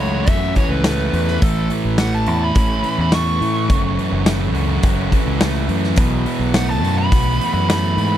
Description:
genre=indie rock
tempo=105 BPM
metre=4/4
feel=straight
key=F# minor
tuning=A4 = 440 Hz
part: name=dark smooth lead guitar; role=melody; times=0.0-8.2 s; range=A4 to C#6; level=-23 LUFS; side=equal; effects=overdrive, tape echo
part: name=thick fuzz guitar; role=riff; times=0.0-8.2 s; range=F#2 to F#4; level=-20 LUFS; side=right 1 dB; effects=distortion
part: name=growling fingered electric bass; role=bass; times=0.0-8.2 s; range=F#1 to A2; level=-20 LUFS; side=equal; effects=overdrive
part: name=big rock drum kit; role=drums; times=0.3-8.1 s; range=hi-hat, kick drum, snare drum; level=-18 LUFS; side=equal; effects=none
room=little or no reverb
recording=dry, close 1970s-style studio recording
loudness=-15 LUFS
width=side -11 dB against mid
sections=0.0-8.2 A section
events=lead electric guitar solo 0.0-8.2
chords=0.0 F#m7; 1.4 A; 3.7 F#m7; 6.0 B7sus4

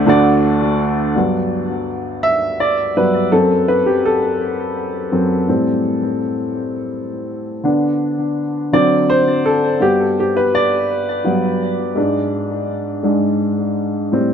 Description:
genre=gospel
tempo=56 BPM (dotted quarters)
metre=6/8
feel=straight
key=G major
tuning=A4 = 438 Hz
part: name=warm upright piano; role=solo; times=0.0-14.3 s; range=D2 to E5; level=-14 LUFS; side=equal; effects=tape echo
room=light reverb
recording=dry, close 1970s-style studio recording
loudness=-15 LUFS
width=side -8 dB against mid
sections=0.0-1.2 A section; 1.2-14.3 B section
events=upright piano solo 1.2-14.3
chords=0.1 D; 1.2 Gmaj7; 3.3 F#dim; 5.5 Am7; 7.6 Bm/D; 8.7 D7; 9.8 Gmaj7; 12.0 N.C.

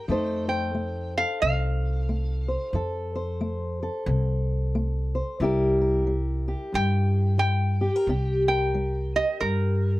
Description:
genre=acoustic country blues, solo or duo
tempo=90 BPM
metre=4/4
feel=swing 60% on 8ths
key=unclear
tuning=A4 = 440 Hz
part: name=lap resonator guitar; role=melody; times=0.0-2.7, 6.8-10.0 s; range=Bb4 to G5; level=-27 LUFS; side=right 1 dB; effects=none
part: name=fingerpicked steel-string acoustic guitar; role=accompaniment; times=0.0-10.0 s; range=G2 to C5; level=-28 LUFS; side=left 1 dB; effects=none
part: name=upright bass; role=bass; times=0.1-10.0 s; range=C2 to G2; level=-26 LUFS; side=equal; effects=none
room=light reverb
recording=close, detailed microphones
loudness=-23 LUFS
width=side -17 dB against mid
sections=0.0-10.0 A section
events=resonator guitar played with a steel bar solo 0.0-10.0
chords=0.1 F7; 5.4 C7

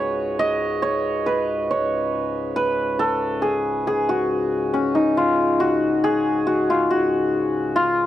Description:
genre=indian classical, Hindustani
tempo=139 BPM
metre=3/4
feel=straight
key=unclear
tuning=A4 = 440 Hz
part: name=santur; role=melody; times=0.0-8.1 s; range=C#4 to D#5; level=-19 LUFS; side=equal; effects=none
part: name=hand-pumped harmonium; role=drone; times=0.0-8.1 s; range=C#2 to G#2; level=-29 LUFS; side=left 5 dB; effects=none
room=light reverb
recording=dry, close 1970s-style studio recording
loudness=-19 LUFS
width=side -12 dB against mid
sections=0.0-6.9 A section; 6.9-8.1 B section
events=none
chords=none

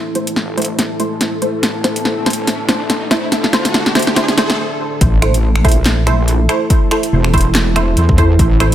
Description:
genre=deep dubstep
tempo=142 BPM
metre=4/4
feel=swing 57% on 16ths, half-time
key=A phrygian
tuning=A4 = 440 Hz
part: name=deep dark ambient pad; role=sustained chords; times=0.0-8.7 s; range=A3 to D5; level=-21 LUFS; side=equal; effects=chorus, built-in reverb
part: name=riser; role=sound effects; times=0.9-4.6 s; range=none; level=-25 LUFS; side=equal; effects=none
part: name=filtered dub chord stab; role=stabs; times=0.2-8.7 s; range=A3 to C5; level=-20 LUFS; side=right 2 dB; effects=wide subtle chorus, vintage 12-bit sampler grit, dub echo
part: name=wobble bass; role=bass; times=0.2-8.7 s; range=E1 to E2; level=-15 LUFS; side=equal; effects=chorus, high-pass filter
part: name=deep house drum kit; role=drums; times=0.2-8.7 s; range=finger snaps, handclaps, hi-hat, snare drum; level=-17 LUFS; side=equal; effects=overdrive, studio reverb
part: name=electronic kick drum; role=drums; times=5.0-8.5 s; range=none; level=-14 LUFS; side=equal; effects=overdrive, studio reverb
room=light reverb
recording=none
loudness=-12 LUFS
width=side -11 dB against mid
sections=0.0-5.0 A section; 5.0-8.7 B section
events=build-up 0.0-5.0; drum fill 0.0-4.6; filter sweep on synth stab 0.0-5.0; riser 0.9-4.6; break 4.6-5.0; drop 5.0-8.7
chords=0.0 Am

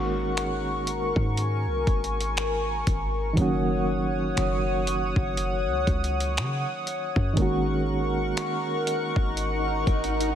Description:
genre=contemporary R&B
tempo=60 BPM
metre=4/4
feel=swing 58% on 16ths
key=unclear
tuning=A4 = 440 Hz
part: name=soft electric-piano-like synth keys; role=accompaniment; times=0.0-10.3 s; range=Eb3 to Gb4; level=-29 LUFS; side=right 2 dB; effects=chorus, tremolo
part: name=chorused pulse-width pad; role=sustained chords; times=0.0-10.3 s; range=Bb4 to Eb6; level=-28 LUFS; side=left 1 dB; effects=none
part: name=warm 808-style bass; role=bass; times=0.0-10.3 s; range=Gb1 to Db3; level=-29 LUFS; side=left 1 dB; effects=none
part: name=dusty soul sampler-style drum kit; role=drums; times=0.4-10.3 s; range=finger snaps, hi-hat, kick drum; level=-28 LUFS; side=equal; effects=none
part: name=swell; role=sound effects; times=8.8-10.3 s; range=none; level=-33 LUFS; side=left 2 dB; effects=none
room=light reverb, digital ambience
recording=none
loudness=-23 LUFS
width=side -9 dB against mid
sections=0.0-10.3 A section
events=swell 8.8-10.3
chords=0.0 Ab9sus4; 3.4 Ebm7/Gb; 7.4 Ab9sus4

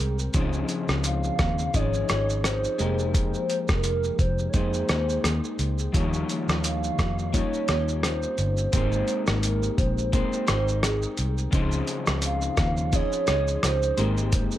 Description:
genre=indie pop, bedroom pop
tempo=86 BPM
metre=4/4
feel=swing 55% on 16ths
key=Ab major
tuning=A4 = 440 Hz
part: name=hollow clarinet-like synth lead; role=melody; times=0.0-14.6 s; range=Ab4 to F5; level=-29 LUFS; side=right 2 dB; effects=lush chorus, slapback echo
part: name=electric guitar through a small old amp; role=accompaniment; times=0.0-14.6 s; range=Db3 to Db5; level=-31 LUFS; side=left 5 dB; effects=lush chorus, vibrato effect
part: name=soft electric-piano-like synth keys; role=accompaniment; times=0.0-14.6 s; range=F3 to G5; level=-34 LUFS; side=right 3 dB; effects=chorus, cassette tape
part: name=vintage muted fingered electric bass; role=bass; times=0.0-14.5 s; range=F1 to F2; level=-27 LUFS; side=equal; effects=none
part: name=dusty soul sampler-style drum kit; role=drums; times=0.2-14.6 s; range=hi-hat, kick drum, rim click, shaker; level=-26 LUFS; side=equal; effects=overdrive
room=digital ambience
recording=none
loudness=-22 LUFS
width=side -13 dB against mid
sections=0.0-14.6 A section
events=none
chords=0.3 Dbmaj9; 2.8 Fm11; 5.9 Eb9; 8.7 Abmaj9; 11.5 Dbmaj9; 14.0 Abmaj9

